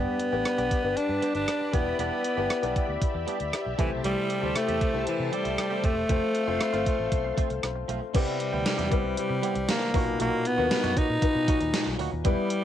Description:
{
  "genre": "1980s-style pop",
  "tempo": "117 BPM",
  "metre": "4/4",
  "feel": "straight",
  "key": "unclear",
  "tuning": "A4 = 440 Hz",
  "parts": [
    { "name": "raspy alto saxophone", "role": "melody", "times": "0.0-12.6 s", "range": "E3 to D#4", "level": "-28 LUFS", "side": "right 1 dB", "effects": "cassette tape" },
    { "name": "warm concert grand piano", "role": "accompaniment", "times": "0.0-12.6 s", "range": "G2 to D5", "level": "-31 LUFS", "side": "left 9 dB", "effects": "none" },
    { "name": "string machine, violas", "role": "sustained chords", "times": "0.0-8.1 s", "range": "G4 to C6", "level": "-36 LUFS", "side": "right 1 dB", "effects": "ensemble chorus" },
    { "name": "direct-recorded clean electric guitar", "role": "riff", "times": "0.0-12.5 s", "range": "E3 to G4", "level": "-36 LUFS", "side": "right 10 dB", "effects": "analog chorus, tape echo" },
    { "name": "vintage muted fingered electric bass", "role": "bass", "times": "0.0-12.3 s", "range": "E1 to C3", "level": "-34 LUFS", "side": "right 1 dB", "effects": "none" },
    { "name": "gated 80s digital drum machine", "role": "drums", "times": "0.2-12.6 s", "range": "crash cymbal, hi-hat, kick drum, rim click, snare drum", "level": "-28 LUFS", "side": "right 1 dB", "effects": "gated reverb, gated reverb snare, cassette tape" }
  ],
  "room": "moderate booth ambience, RT60 0.2 s",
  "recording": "home recording on cassette",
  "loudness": "-24 LUFS",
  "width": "side -10 dB against mid",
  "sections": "0.0-8.1 A section; 8.1-12.6 B section",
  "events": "none",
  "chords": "0.0 G; 1.7 Em7; 3.8 C6; 6.1 F; 8.1 Cmaj7; 9.9 Bmaj7"
}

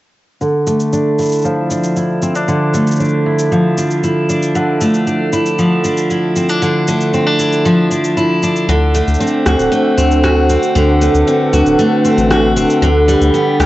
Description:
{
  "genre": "folktronica",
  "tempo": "116 BPM",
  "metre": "4/4",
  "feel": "straight",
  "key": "unclear",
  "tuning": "A4 = 442 Hz",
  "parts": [
    { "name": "picked steel-string acoustic guitar", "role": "arpeggios", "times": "0.4-13.7 s", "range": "D3 to G4", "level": "-12 LUFS", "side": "equal", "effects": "low-pass filter, cassette tape, tape echo" },
    { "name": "electronic shaker and rim click", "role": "drums", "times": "0.4-13.7 s", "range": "none", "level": "-24 LUFS", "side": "equal", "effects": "cassette tape" },
    { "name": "warbly tape-like pad", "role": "sustained chords", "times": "9.1-13.7 s", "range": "D4 to B5", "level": "-15 LUFS", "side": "equal", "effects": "chorus, built-in reverb, cassette tape" },
    { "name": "round analog bass", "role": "bass", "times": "8.7-13.7 s", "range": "D1 to D2", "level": "-15 LUFS", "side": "equal", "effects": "none" }
  ],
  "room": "light reverb",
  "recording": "home recording on cassette, nothing above 8.0 kHz",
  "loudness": "-11 LUFS",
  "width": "side -16 dB against mid",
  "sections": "0.4-13.7 A section",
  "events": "filter sweep on steel-string acoustic guitar 0.4-13.7",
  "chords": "0.4 Dmadd9; 8.7 D7; 12.8 G/D"
}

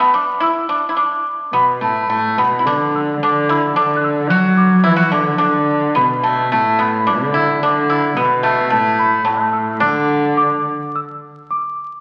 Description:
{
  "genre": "chinese traditional, Chinese chamber ensemble",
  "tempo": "108 BPM",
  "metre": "2/4",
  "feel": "rubato",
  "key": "D gong mode",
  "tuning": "A4 = 441 Hz",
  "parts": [
    { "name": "celesta", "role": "melody", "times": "0.0-12.0 s", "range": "A5 to F#6", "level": "-20 LUFS", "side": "equal", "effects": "none" },
    { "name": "pipa", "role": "second line", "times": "0.0-10.6 s", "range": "A3 to F#4", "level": "-21 LUFS", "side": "equal", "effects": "none" },
    { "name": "dark cello", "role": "second line", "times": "1.5-10.7 s", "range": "A2 to F#3", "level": "-20 LUFS", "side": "equal", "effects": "none" }
  ],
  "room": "wet concert hall reverb, RT60 1.9 s",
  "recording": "very old 78 rpm record, vinyl crackle, nothing above 11.0 kHz",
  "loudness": "-16 LUFS",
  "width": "mono",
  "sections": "0.0-2.1 A section; 2.1-10.9 B section; 10.9-12.0 C section",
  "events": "none",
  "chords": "none"
}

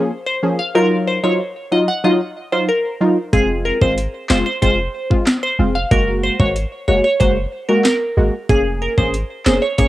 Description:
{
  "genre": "dancehall",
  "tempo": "93 BPM",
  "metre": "4/4",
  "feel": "straight",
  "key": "F phrygian",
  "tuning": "A4 = 440 Hz",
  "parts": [
    { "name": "punchy chord stab", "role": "accompaniment", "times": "0.0-9.9 s", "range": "F3 to Ab4", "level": "-18 LUFS", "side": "left 1 dB", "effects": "chorus, sidechain pumping, cassette tape" },
    { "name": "glassy wavetable pluck", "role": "melody", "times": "0.3-9.9 s", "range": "Ab4 to Gb5", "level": "-19 LUFS", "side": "right 1 dB", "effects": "chorus, cassette tape, analog delay" },
    { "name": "clean 808-style bass", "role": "bass", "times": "3.3-9.9 s", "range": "F1 to Ab1", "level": "-20 LUFS", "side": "equal", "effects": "none" },
    { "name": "island pop drum kit", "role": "drums", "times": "3.3-9.9 s", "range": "handclaps, hi-hat, kick drum, snare drum", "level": "-17 LUFS", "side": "equal", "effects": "overdrive, cassette tape" }
  ],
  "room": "light reverb, digital ambience",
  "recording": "home recording on cassette",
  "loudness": "-15 LUFS",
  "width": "side -15 dB against mid",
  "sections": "0.0-9.9 A section",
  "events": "none",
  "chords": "0.0 Bbm7/F; 0.8 Ebmadd9/Gb; 3.3 Fm; 5.9 Gbadd9; 8.5 Bbm7/F"
}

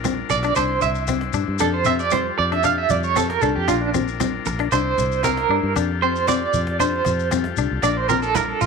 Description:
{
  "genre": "highlife guitar band",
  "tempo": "116 BPM",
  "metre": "4/4",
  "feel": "straight",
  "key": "F major",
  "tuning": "A4 = 438 Hz",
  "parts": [
    { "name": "combo organ", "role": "sustained chords", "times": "0.0-8.7 s", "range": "D4 to C5", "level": "-29 LUFS", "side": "left 13 dB", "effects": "none" },
    { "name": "fingered electric bass", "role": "bass", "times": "0.0-8.7 s", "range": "Bb1 to G2", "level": "-26 LUFS", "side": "left 1 dB", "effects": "none" },
    { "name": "cajon", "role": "drums", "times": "0.0-8.7 s", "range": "none", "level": "-33 LUFS", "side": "left 1 dB", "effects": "none" },
    { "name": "shekere", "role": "percussion", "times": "0.0-8.7 s", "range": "none", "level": "-30 LUFS", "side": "left 8 dB", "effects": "none" },
    { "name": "electric guitar at the edge of break-up", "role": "accompaniment", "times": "0.1-8.2 s", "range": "C4 to D4", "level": "-25 LUFS", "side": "left 16 dB", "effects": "spring reverb" },
    { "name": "congas", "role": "percussion", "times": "0.1-8.7 s", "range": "none", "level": "-31 LUFS", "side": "right 10 dB", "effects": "none" },
    { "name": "electric guitar at the edge of break-up", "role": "arpeggios", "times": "0.3-8.7 s", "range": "D4 to F5", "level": "-21 LUFS", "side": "right 10 dB", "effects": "tremolo, slapback echo" }
  ],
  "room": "moderate plate reverb, RT60 1.6 s",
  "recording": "1960s-style stereo with parts hard left and right",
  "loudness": "-18 LUFS",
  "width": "side -5 dB against mid",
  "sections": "0.0-8.7 A section",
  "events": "clean electric guitar solo 0.0-8.7",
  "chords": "0.0 Bb; 0.6 Cadd9; 1.6 Fadd9; 3.7 Bb; 4.7 Cadd9; 5.8 Fadd9; 7.8 Bb"
}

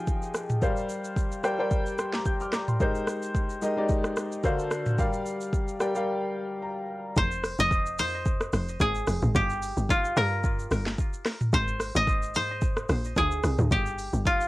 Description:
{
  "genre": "amapiano",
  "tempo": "110 BPM",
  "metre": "4/4",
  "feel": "swing 55% on 16ths",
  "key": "F dorian",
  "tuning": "A4 = 440 Hz",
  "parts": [
    { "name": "clear baby grand piano", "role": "accompaniment", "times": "0.0-7.2 s", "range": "D3 to G6", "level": "-28 LUFS", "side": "left 1 dB", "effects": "cassette tape" },
    { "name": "afro-pop drum kit", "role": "drums", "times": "0.1-14.5 s", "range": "hi-hat, kick drum, rim click, shaker, snare drum, toms", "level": "-28 LUFS", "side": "equal", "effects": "vintage 12-bit sampler grit" },
    { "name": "koto", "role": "melody", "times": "7.2-14.5 s", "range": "F4 to Eb5", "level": "-28 LUFS", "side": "equal", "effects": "cassette tape, analog delay" },
    { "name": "tight log drum bass", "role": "bass", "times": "7.2-14.5 s", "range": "F1 to Ab2", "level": "-29 LUFS", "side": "equal", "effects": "none" }
  ],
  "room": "little or no reverb",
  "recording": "home recording on cassette",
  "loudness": "-25 LUFS",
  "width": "side -18 dB against mid",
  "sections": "0.0-7.2 A section; 7.2-14.5 B section",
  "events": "break 6.1-7.2; grand piano fill 6.3-7.2; drop 7.2-14.5",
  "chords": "0.0 Fm9; 0.6 C9sus4/G; 2.8 Abmaj9; 4.4 D7alt; 5.0 Gm7; 7.2 Fm; 9.3 Gm7; 11.5 Abadd9; 13.2 Ab; 13.7 N.C."
}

